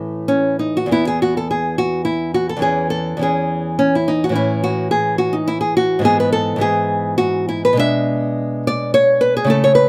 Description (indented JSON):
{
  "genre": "classical, baroque-style dance for nylon-string guitar",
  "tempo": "105 BPM",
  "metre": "3/4",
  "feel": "rubato",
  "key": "E major",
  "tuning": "A4 = 440 Hz",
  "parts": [
    { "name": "nylon-string guitar", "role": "solo", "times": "0.0-9.9 s", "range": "E2 to E5", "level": "-17 LUFS", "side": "equal", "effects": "none" }
  ],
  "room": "light reverb",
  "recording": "none",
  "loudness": "-18 LUFS",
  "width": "mono",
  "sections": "0.9-9.9 A section",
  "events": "none",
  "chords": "0.0 A; 0.9 E5; 2.7 C#m/E; 4.4 A; 6.1 E/G#; 7.8 E7/B",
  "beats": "0.29 | 0.92 1.51 2.09 | 2.65 3.23 3.81 | 4.38 4.94 5.50 | 6.06 6.62 7.19 | 7.79 8.37 8.94 | 9.50"
}